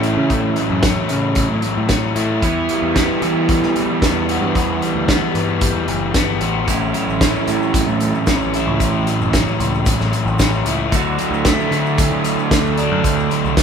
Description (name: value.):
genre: indie rock.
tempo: 113 BPM.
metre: 4/4.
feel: straight.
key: unclear.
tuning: A4 = 440 Hz.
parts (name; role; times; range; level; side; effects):
crunchy overdriven guitar; riff; 0.0-13.6 s; A2 to F#4; -20 LUFS; left 5 dB; none.
overdriven electric guitar; riff; 0.0-13.6 s; A2 to F#4; -21 LUFS; right 7 dB; none.
growling picked electric bass; bass; 0.0-13.6 s; F#1 to E3; -23 LUFS; equal; overdrive.
loose indie drum kit; drums; 0.0-13.6 s; hi-hat, kick drum, snare drum; -19 LUFS; equal; none.
tube shaker; percussion; 6.7-13.6 s; none; -36 LUFS; left 8 dB; none.
room: moderate large studio reverb, RT60 1.1 s.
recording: band playing live in one room.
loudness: -15 LUFS.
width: side -7 dB against mid.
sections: 0.0-13.6 A section.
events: none.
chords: 0.0 A6; 2.4 Emadd9; 6.7 A6; 10.9 D.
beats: | 0.30 0.83 1.36 1.90 | 2.43 2.96 3.49 4.02 | 4.55 5.09 5.62 6.15 | 6.68 7.21 7.74 8.27 | 8.80 9.34 9.87 10.40 | 10.93 11.46 11.98 12.51 | 13.04 13.57.